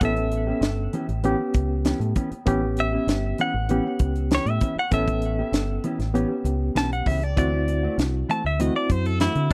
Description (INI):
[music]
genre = straight-eighth soul blues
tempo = 98 BPM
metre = 4/4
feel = straight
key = A mixolydian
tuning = A4 = 435 Hz
[part]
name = direct-recorded clean electric guitar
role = melody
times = 0.0-9.5 s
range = E4 to A5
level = -30 LUFS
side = equal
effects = none
[part]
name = barky reed electric piano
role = accompaniment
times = 0.0-9.5 s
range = B3 to A4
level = -29 LUFS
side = equal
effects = overdrive, fast tremolo
[part]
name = mellow electric guitar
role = stabs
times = 0.0-9.5 s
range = E3 to G4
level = -32 LUFS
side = equal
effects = spring reverb
[part]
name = deep dub fingered electric bass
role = bass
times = 0.0-9.5 s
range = G1 to D3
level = -28 LUFS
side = equal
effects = none
[part]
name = tight funk drum kit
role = drums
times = 0.0-9.5 s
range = hi-hat, kick drum, snare drum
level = -27 LUFS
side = equal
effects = none
[sound]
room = little or no reverb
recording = dry, close 1970s-style studio recording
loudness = -24 LUFS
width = mono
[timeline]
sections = 0.0-9.5 A section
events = none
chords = 0.0 A9; 7.4 D9